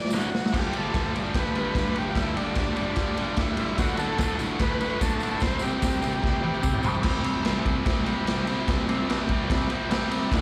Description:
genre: garage rock duo or trio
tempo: 147 BPM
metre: 4/4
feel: straight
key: unclear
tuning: A4 = 440 Hz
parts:
  - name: combo organ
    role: melody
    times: 0.0-6.8 s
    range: D4 to D5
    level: -34 LUFS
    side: equal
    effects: slapback echo
  - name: raw garage drum kit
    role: drums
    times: 0.0-10.4 s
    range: crash cymbal, kick drum, ride cymbal, snare drum, toms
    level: -28 LUFS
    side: equal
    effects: none
  - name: biting overdriven guitar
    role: riff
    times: 0.1-10.4 s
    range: D2 to C4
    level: -30 LUFS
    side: equal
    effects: slapback echo
  - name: tambourine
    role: percussion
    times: 0.1-0.5, 3.8-7.0 s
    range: none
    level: -47 LUFS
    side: equal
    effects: none
room: little or no reverb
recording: live gig heard through the venue's PA, recital hall reverb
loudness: -26 LUFS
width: mono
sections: 0.5-7.1 A section; 7.1-10.4 B section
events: drum fill 0.0-0.5, 6.2-7.1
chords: 0.0 D5; 0.5 G5; 3.8 D5; 5.4 C5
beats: 0.12 | 0.53 0.94 1.35 1.76 | 2.16 2.57 2.98 3.39 | 3.79 4.20 4.61 5.02 | 5.42 5.83 6.24 6.65 | 7.05 7.46 7.87 8.28 | 8.68 9.09 9.50 9.91 | 10.31

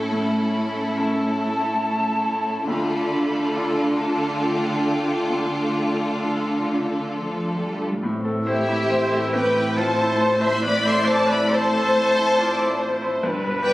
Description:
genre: cinematic, emotional film score for orchestra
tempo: 70 BPM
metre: 3/4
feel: rubato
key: A minor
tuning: A4 = 438 Hz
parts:
  - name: rich studio violin section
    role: second line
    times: 0.0-13.7 s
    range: E4 to E5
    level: -25 LUFS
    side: left 1 dB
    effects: none
  - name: bright grand piano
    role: accompaniment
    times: 0.0-13.7 s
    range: D2 to D5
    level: -28 LUFS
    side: left 1 dB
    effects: none
  - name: dark studio viola section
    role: accompaniment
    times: 0.0-13.7 s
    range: A3 to D5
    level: -26 LUFS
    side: equal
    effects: none
  - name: rich studio cello section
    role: bass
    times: 0.0-13.7 s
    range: G2 to G3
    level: -27 LUFS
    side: right 1 dB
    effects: none
  - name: concert flute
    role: second line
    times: 0.1-13.7 s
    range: E5 to C6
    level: -29 LUFS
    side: equal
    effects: none
  - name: mellow French horn section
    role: sustained chords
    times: 8.0-13.7 s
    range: B2 to E4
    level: -30 LUFS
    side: equal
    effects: none
  - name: warm studio double bass section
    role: bass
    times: 8.0-13.7 s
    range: G1 to A1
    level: -35 LUFS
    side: right 1 dB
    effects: none
  - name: rich studio violin section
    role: melody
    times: 8.5-13.7 s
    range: E5 to C6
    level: -26 LUFS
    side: left 1 dB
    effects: none
  - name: clear oboe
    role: second line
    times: 8.5-13.7 s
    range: E4 to C5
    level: -30 LUFS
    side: equal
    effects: none
room: moderate scoring stage reverb, RT60 2.1 s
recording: recorded on a phone in the room, club reverb, compression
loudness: -19 LUFS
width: side -17 dB against mid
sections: 0.0-8.0 A section; 8.0-13.7 A section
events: none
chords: 0.0 A; 2.7 Dm; 8.0 Am; 13.2 G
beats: | 0.12 0.98 1.83 | 2.68 3.54 4.41 | 5.31 6.22 7.14 | 8.03 8.91 9.78 | 10.64 11.51 12.37 | 13.22

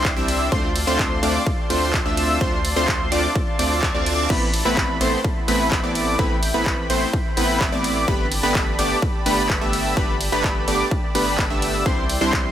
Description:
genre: EDM, festival progressive house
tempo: 127 BPM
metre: 4/4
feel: straight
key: A minor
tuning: A4 = 440 Hz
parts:
  - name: lush unison pad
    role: sustained chords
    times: 0.0-12.5 s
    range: E4 to C6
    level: -29 LUFS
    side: equal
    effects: chorus, sidechain pumping
  - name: wide unison lead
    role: arpeggios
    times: 0.0-12.5 s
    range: B5 to E6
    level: -26 LUFS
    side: equal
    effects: wide subtle chorus, sidechain pumping, dub echo
  - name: supersaw stab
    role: riff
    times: 0.0-12.5 s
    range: G3 to E5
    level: -22 LUFS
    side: equal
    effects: sidechain pumping, dub echo
  - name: saturated sub bass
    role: bass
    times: 0.0-12.5 s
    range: G1 to D2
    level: -28 LUFS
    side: equal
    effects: sidechain pumping
  - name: big-room dance drum kit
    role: drums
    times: 0.0-12.4 s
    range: crash cymbal, handclaps, hi-hat, ride cymbal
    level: -26 LUFS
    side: equal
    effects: none
  - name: electronic kick drum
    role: drums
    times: 0.0-12.4 s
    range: none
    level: -24 LUFS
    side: equal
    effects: overdrive
  - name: reverse cymbal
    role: sound effects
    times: 3.6-4.3 s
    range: none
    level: -33 LUFS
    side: right 6 dB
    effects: none
room: light reverb, digital ambience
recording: none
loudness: -18 LUFS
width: side -10 dB against mid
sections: 0.0-12.5 A section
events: reverse cymbal 3.6-4.3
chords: 0.0 Cadd9; 0.5 Dm7; 4.3 Amadd9; 8.1 Gadd9; 11.9 Cadd9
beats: 0.05 | 0.52 0.99 1.47 1.94 | 2.41 2.88 3.35 3.83 | 4.30 4.77 5.24 5.72 | 6.19 6.66 7.13 7.61 | 8.08 8.55 9.02 9.50 | 9.97 10.44 10.91 11.39 | 11.86 12.33

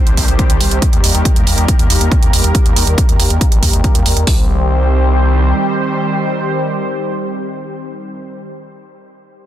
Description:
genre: uplifting trance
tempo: 139 BPM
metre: 4/4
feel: straight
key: C minor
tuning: A4 = 441 Hz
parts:
  - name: lush unison pad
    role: sustained chords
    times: 0.0-8.5 s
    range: Eb3 to C5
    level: -18 LUFS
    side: equal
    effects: chorus, phaser, sidechain pumping
  - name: gritty driven synth bass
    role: bass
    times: 0.1-5.5 s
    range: Bb1 to Eb2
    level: -14 LUFS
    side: equal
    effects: sidechain pumping
  - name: electronic hi-hat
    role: drums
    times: 0.1-4.3 s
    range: none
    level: -18 LUFS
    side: right 4 dB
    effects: none
  - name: techno drum kit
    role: drums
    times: 0.2-4.4 s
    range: hi-hat, kick drum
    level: -13 LUFS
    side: equal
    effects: none
room: digital ambience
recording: dense, heavily limited modern master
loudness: -11 LUFS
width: side -12 dB against mid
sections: 0.0-4.3 A section; 4.3-7.7 B section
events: none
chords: 0.0 Cm; 0.8 Eb; 4.3 Cm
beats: 0.39 | 0.82 1.25 1.68 2.12 | 2.55 2.98 3.41 3.84 | 4.27 4.70 5.14 5.57 | 6.00 6.43 6.86 7.29

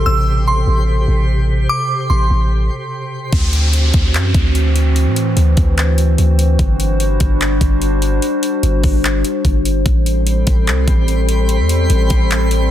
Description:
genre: hip hop, atmospheric cloud-rap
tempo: 147 BPM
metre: 4/4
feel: half-time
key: A dorian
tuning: A4 = 443 Hz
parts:
  - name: glassy synth bell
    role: melody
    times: 0.0-3.3 s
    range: C6 to E6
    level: -20 LUFS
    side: right 1 dB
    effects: chorus, digital delay
  - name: warbly tape-like pad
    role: sustained chords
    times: 0.0-12.7 s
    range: B2 to C5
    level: -20 LUFS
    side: left 1 dB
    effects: chorus, built-in reverb, sidechain pumping
  - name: warm 808-style bass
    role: bass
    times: 0.0-12.7 s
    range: G1 to A2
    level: -14 LUFS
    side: equal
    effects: none
  - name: twinkling granular texture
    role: texture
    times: 0.0-3.3, 10.3-12.7 s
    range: G4 to B6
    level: -27 LUFS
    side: equal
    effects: built-in reverb
  - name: trap drum kit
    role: drums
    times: 3.3-12.6 s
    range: handclaps, hi-hat, kick drum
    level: -17 LUFS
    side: equal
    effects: none
  - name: downlifter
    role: sound effects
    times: 3.3-6.6 s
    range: none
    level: -24 LUFS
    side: equal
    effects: none
room: digital ambience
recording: dense, heavily limited modern master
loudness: -12 LUFS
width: side -12 dB against mid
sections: 0.0-3.3 A section; 3.3-12.7 B section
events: stop 2.9-3.3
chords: 0.0 Am9; 3.3 D9; 6.6 G5; 9.9 Am9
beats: | 0.06 0.47 0.88 1.28 | 1.69 2.10 2.51 2.92 | 3.33 3.73 4.14 4.55 | 4.96 5.37 5.78 6.18 | 6.59 7.00 7.41 7.82 | 8.22 8.63 9.04 9.45 | 9.86 10.27 10.67 11.08 | 11.49 11.90 12.30

